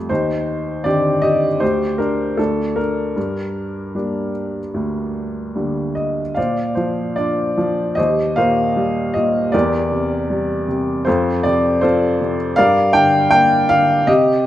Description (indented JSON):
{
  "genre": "classical, lyrical solo piano",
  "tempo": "77 BPM",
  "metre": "4/4",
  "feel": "uneven beats, rubato",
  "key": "G minor, Bb major from 6.4 s",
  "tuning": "A4 = 440 Hz",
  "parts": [
    { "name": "warm upright piano", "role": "solo", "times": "0.0-14.5 s", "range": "D2 to G5", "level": "-16 LUFS", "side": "equal", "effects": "none" }
  ],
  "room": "light reverb",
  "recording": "none",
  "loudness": "-16 LUFS",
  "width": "side -13 dB against mid",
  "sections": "0.0-6.4 A section; 6.4-14.5 B section",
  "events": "none",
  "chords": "0.1 Cmadd9/Eb; 1.6 Gm/D; 2.4 N.C.; 3.2 Gm; 6.4 Bbadd9; 8.0 Eb6; 9.5 C7/E; 11.1 F; 12.6 Gm",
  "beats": "| 0.10 0.85 1.61 2.38 | 3.17 3.95 4.74 5.56 | 6.37 7.17 7.98 8.77 | 9.54 10.30 11.06 11.83 | 12.58 13.33 14.08"
}